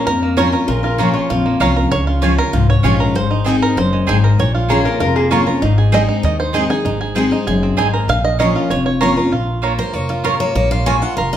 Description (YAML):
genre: bluegrass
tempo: 194 BPM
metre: 4/4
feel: straight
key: Bb minor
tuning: A4 = 439 Hz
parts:
  - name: bluegrass banjo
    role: melody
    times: 0.0-11.4 s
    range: Ab3 to F5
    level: -20 LUFS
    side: right 3 dB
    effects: none
  - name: picked steel-string acoustic guitar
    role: accompaniment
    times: 0.0-11.4 s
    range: F2 to Ab5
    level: -17 LUFS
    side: left 2 dB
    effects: none
  - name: upright bass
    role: bass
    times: 0.1-11.4 s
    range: F1 to F2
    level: -20 LUFS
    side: right 1 dB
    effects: none
  - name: mandolin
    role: stabs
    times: 0.4-11.0 s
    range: C4 to Bb5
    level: -22 LUFS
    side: right 5 dB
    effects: none
  - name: lap resonator guitar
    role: second line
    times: 0.7-1.5, 4.7-5.8 s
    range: F4 to Db5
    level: -21 LUFS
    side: left 3 dB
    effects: none
room: wet large studio reverb, RT60 1.1 s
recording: heard from further back in the room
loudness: -13 LUFS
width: side -10 dB against mid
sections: 0.0-9.3 A section; 9.3-11.4 A section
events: five-string banjo solo 0.0-9.3; steel-string acoustic guitar solo 9.3-11.4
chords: 0.0 Bbm; 1.9 Db; 3.2 Ab; 4.4 Bbm; 5.6 Ab; 8.1 Bbm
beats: 0.07 0.37 | 0.68 0.99 1.30 1.61 | 1.92 2.23 2.54 2.84 | 3.15 3.46 3.77 4.08 | 4.39 4.70 5.00 5.31 | 5.62 5.93 6.24 6.54 | 6.85 7.16 7.47 7.78 | 8.09 8.39 8.70 9.01 | 9.32 9.63 9.94 10.25 | 10.56 10.86 11.17